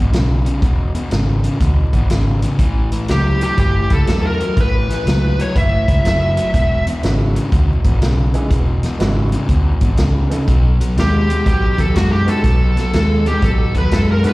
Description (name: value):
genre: electric blues shuffle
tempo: 122 BPM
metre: 4/4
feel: swing 66% on 8ths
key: E mixolydian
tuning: A4 = 440 Hz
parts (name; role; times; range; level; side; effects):
- overdriven semi-hollow guitar; riff; 0.0-14.3 s; E2 to G#3; -20 LUFS; left 1 dB; none
- vintage muted fingered electric bass; bass; 0.0-14.2 s; E1 to F#2; -16 LUFS; equal; none
- vintage drum kit; drums; 0.1-14.3 s; hi-hat, kick drum, snare drum; -19 LUFS; equal; none
- smooth overdriven lead guitar; melody; 3.1-6.8, 11.0-14.3 s; F#4 to E5; -20 LUFS; right 1 dB; none
- bright upright piano; accompaniment; 7.0-14.3 s; G#3 to A4; -26 LUFS; right 3 dB; slapback echo
room: studio ambience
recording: live gig heard through the venue's PA, recital hall reverb, vinyl crackle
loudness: -13 LUFS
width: side -20 dB against mid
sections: 0.0-14.3 A section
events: none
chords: 0.0 E; 2.6 A9; 6.5 E9; 10.5 B7